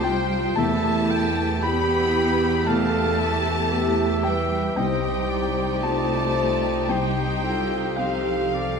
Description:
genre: cinematic.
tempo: 57 BPM.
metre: 4/4.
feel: rubato.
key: unclear.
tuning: A4 = 439 Hz.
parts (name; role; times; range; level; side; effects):
warm studio violin section; melody; 0.0-8.8 s; F5 to B5; -31 LUFS; left 4 dB; none.
clear oboe; second line; 0.0-8.8 s; C5 to G5; -31 LUFS; right 2 dB; none.
rich studio violin section; second line; 0.0-8.8 s; F5 to B5; -32 LUFS; left 3 dB; none.
warm clarinet; second line; 0.0-8.8 s; E4 to A4; -32 LUFS; left 1 dB; none.
felt-muted upright piano; accompaniment; 0.0-8.8 s; E1 to B5; -28 LUFS; left 3 dB; none.
rich studio viola section; accompaniment; 0.0-8.8 s; E3 to G4; -31 LUFS; right 3 dB; none.
dark French horn section; sustained chords; 0.0-8.8 s; Eb4 to C5; -27 LUFS; left 1 dB; none.
concert harp; arpeggios; 0.0-8.8 s; C3 to B5; -33 LUFS; left 6 dB; none.
clear studio cello section; bass; 0.0-8.8 s; F3 to B3; -28 LUFS; right 4 dB; none.
rich studio double bass section; bass; 0.0-8.8 s; C2 to E2; -30 LUFS; right 3 dB; none.
room: wet scoring stage reverb, RT60 1.6 s.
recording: minimal, uncompressed stereo recording.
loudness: -20 LUFS.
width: side -6 dB against mid.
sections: 0.0-8.8 A section.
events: none.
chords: 0.0 Cm; 0.6 Em; 4.8 Cm.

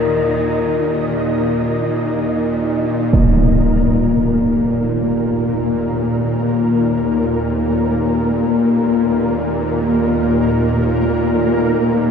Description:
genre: dark ambient drone.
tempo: free time.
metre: none.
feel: none.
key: unclear.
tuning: A4 = 440 Hz.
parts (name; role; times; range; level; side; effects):
dark cello; melody; 0.0-2.0 s; Eb3; -30 LUFS; right 1 dB; diffuse ambient delay.
deep dark ambient pad; sustained chords; 0.0-12.1 s; Eb4 to Eb5; -24 LUFS; equal; chorus, built-in reverb.
bowed-like drone; drone; 0.0-12.1 s; Eb2 to Bb2; -17 LUFS; left 1 dB; built-in reverb.
flickering grainy texture; texture; 0.0-12.1 s; Bb3 to Eb5; -23 LUFS; equal; built-in reverb.
gamelan-type bronze metallophone; arpeggios; 3.1-9.9 s; Bb3; -23 LUFS; left 3 dB; diffuse ambient delay.
impact; percussion; 3.1-3.4 s; none; -18 LUFS; right 1 dB; low-pass filter on sfx.
room: wet cathedral reverb, RT60 5.3 s.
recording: none.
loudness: -14 LUFS.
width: side -6 dB against mid.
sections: 0.0-3.1 A section; 3.1-12.1 B section.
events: filter sweep on synth drone 3.1-12.1.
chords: 0.0 Eb5.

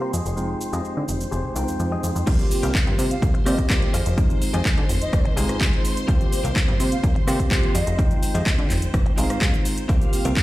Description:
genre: filtered disco house.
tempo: 126 BPM.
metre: 4/4.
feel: straight.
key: F minor.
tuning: A4 = 440 Hz.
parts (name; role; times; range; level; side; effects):
bell-like tine electric piano; accompaniment; 0.0-10.4 s; G3 to G5; -28 LUFS; equal; phaser, sidechain pumping, low-pass filter.
phased string machine; sustained chords; 0.0-10.4 s; C5 to F5; -34 LUFS; equal; ensemble chorus, phaser, sidechain pumping, low-pass filter.
direct-recorded clean electric guitar; riff; 0.0-10.4 s; F4 to Ab5; -34 LUFS; left 4 dB; sidechain pumping, low-pass filter.
plucky analog bass; bass; 0.1-10.3 s; F1 to D3; -25 LUFS; equal; tube saturation, sidechain pumping, low-pass filter.
house drum kit; drums; 0.1-10.4 s; crash cymbal, handclaps, hi-hat, rim click, shaker; -28 LUFS; equal; overdrive, sidechain pumping on perc, sidechain pumping on hats, sidechain pumping on cymbals.
electronic kick drum; drums; 2.3-10.4 s; none; -21 LUFS; equal; overdrive.
mellow hollow jazz flute; melody; 3.1-9.5 s; Eb5 to F5; -33 LUFS; equal; sidechain pumping, low-pass filter, tape echo.
room: digital ambience.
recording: played on a big sound system in a bare room, stone room reverb.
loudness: -19 LUFS.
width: side -17 dB against mid.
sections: 0.0-2.3 A section; 2.3-10.4 B section.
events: drop 2.3-10.4; clean electric guitar fill 5.1-6.1.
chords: 0.1 Fm9; 2.3 C7sus4; 3.9 Fm9; 6.1 C7sus4; 7.8 Fm9; 9.9 C7sus4.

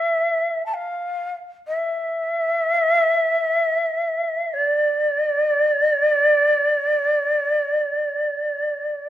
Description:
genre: japanese traditional, Japanese chamber music.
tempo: free time.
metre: none.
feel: none.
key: D hirajoshi.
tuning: A4 = 440 Hz.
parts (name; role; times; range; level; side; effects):
breathy shakuhachi; melody; 0.0-9.1 s; D5 to A5; -18 LUFS; equal; none.
koto; accompaniment; 0.0-1.0 s; E4 to A4; -69 LUFS; right 1 dB; none.
room: moderate recital hall reverb, RT60 1.4 s.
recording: none.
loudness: -18 LUFS.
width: side -12 dB against mid.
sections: 0.0-9.1 A section.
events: none.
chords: none.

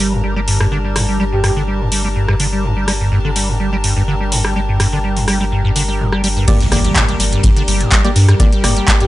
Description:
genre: acid house.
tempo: 125 BPM.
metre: 4/4.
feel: straight.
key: G minor.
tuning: A4 = 439 Hz.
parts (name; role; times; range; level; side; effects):
warbly tape-like pad; sustained chords; 0.0-9.1 s; G3 to G5; -26 LUFS; left 2 dB; chorus, built-in reverb, sidechain pumping.
liquid acid bass; riff; 0.0-9.1 s; G2 to G3; -18 LUFS; equal; tube saturation, ensemble chorus, cassette tape, analog delay.
saturated sub bass; bass; 0.0-8.8 s; G1 to G2; -18 LUFS; equal; tube saturation, sidechain pumping.
booming analog drum machine; drums; 0.0-9.1 s; crash cymbal, handclaps, hi-hat, rim click; -18 LUFS; equal; none.
rich studio string section; texture; 0.0-9.1 s; D4 to A5; -27 LUFS; left 1 dB; sidechain pumping.
breathy flute-like synth lead; melody; 1.3-1.5, 9.0-9.1 s; G4; -23 LUFS; right 1 dB; chorus, analog delay.
percussive organ stab; stabs; 6.5-9.1 s; Bb3 to D5; -23 LUFS; equal; chorus, analog delay.
electronic kick drum; drums; 6.5-9.0 s; none; -14 LUFS; equal; none.
modern studio drum kit; drums; 6.5-9.1 s; ride cymbal, snare drum; -31 LUFS; left 4 dB; none.
impact; sound effects; 6.5-8.4 s; none; -22 LUFS; equal; none.
room: little or no reverb.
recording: dry, gritty hardware recording, transformer saturation, nothing above 10.7 kHz.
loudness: -12 LUFS.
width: side -16 dB against mid.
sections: 0.0-6.5 A section; 6.5-9.1 B section.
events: filter sweep on ambient pad 0.0-6.5; drop 6.5-9.1; impact 6.5-8.4.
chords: 0.0 Gm.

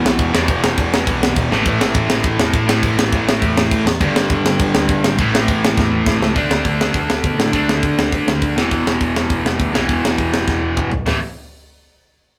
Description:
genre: punk rock.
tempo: 204 BPM.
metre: 4/4.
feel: straight.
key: unclear.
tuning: A4 = 440 Hz.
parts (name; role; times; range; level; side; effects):
distorted electric guitar; riff; 0.0-11.2 s; E2 to D4; -20 LUFS; equal; distortion.
growling picked electric bass; bass; 0.0-11.2 s; E1 to D3; -26 LUFS; equal; overdrive.
tight metal drum kit; drums; 0.1-11.1 s; crash cymbal, hi-hat, kick drum, snare drum, toms; -20 LUFS; equal; none.
room: moderate studio reverb, RT60 0.5 s.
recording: rough rehearsal-room recording.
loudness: -17 LUFS.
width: mono.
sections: 0.0-6.4 A section; 6.4-11.1 B section; 11.1-12.2 C section.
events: drum fill 1.5, 5.8-6.4, 10.5-11.1.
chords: 0.0 E5; 1.5 A5; 4.0 G5; 5.2 A5; 6.4 D5; 8.6 E5; 11.1 A5.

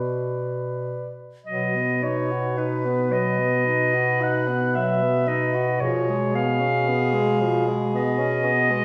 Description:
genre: classical, lyrical piece for single-reed quartet.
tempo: 56 BPM.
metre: 4/4.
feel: rubato.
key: B major.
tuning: A4 = 442 Hz.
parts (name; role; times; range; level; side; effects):
warm clarinet; melody; 0.0-8.8 s; B4 to F#5; -27 LUFS; equal; none.
clear alto saxophone; second line; 0.0-8.8 s; G#4 to B4; -30 LUFS; equal; none.
clear tenor saxophone; accompaniment; 0.0-8.8 s; E#3 to F#4; -30 LUFS; equal; none.
warm bass clarinet; bass; 0.0-8.8 s; B2; -29 LUFS; equal; none.
room: wet recital hall reverb, RT60 1.3 s.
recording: recorded in a church or concert hall.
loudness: -23 LUFS.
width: mono.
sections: 0.0-1.5 A section; 1.5-8.8 B section.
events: none.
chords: 0.0 Bm; 1.5 B; 5.8 C#7/B.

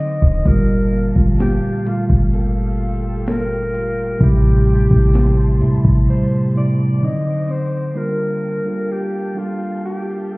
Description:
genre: contemporary R&B.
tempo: 64 BPM.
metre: 4/4.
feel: straight.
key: G dorian.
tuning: A4 = 440 Hz.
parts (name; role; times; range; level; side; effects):
clear alto saxophone; melody; 0.0-10.4 s; F4 to Eb5; -25 LUFS; left 1 dB; none.
mellow tine electric piano; accompaniment; 0.0-10.4 s; Bb2 to Bb4; -19 LUFS; right 1 dB; none.
muted studio string section; sustained chords; 0.0-10.4 s; G4 to D6; -37 LUFS; left 1 dB; none.
clean electric guitar; arpeggios; 0.0-8.6 s; A2 to A4; -23 LUFS; left 1 dB; spring reverb.
clean 12-bit digital drum machine; drums; 0.0-6.1 s; hi-hat, kick drum, snare drum; -16 LUFS; equal; none.
warm 808-style bass; bass; 0.2-6.1 s; D1 to C3; -17 LUFS; equal; none.
room: little or no reverb.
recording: heard muffled through a wall, stone room reverb, EQ.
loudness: -15 LUFS.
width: side -24 dB against mid.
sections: 0.0-8.0 A section; 8.0-10.4 A section.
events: break 6.1-8.0.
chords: 0.5 Gm9; 4.2 Am7; 7.0 D7b9; 8.0 Gm9.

